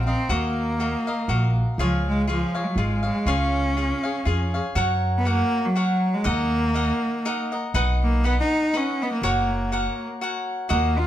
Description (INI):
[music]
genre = mexican folk, mariachi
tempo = 121 BPM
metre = 3/4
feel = swing 54% on 8ths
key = Db major, F# major from 4.8 s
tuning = A4 = 440 Hz
[part]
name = rich cello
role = melody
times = 0.0-11.1 s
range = F3 to E#4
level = -25 LUFS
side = equal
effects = none
[part]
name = cavaquinho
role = accompaniment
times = 0.0-11.1 s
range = D#4 to F#5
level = -26 LUFS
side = left 1 dB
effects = none
[part]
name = upright bass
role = bass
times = 0.0-11.1 s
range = F#1 to F#2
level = -24 LUFS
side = equal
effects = none
[sound]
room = light reverb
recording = close, detailed microphones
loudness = -21 LUFS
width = side -12 dB against mid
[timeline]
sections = 0.0-4.8 A section; 4.8-11.1 B section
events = none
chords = 0.0 Ebmadd9; 1.8 Db; 4.8 F#; 6.3 D#m; 7.7 B; 9.2 F#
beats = | 0.30 0.80 1.29 | 1.78 2.28 2.77 | 3.27 3.76 4.26 | 4.76 5.26 5.76 | 6.26 6.76 7.25 | 7.75 8.24 8.73 | 9.22 9.72 10.21 | 10.71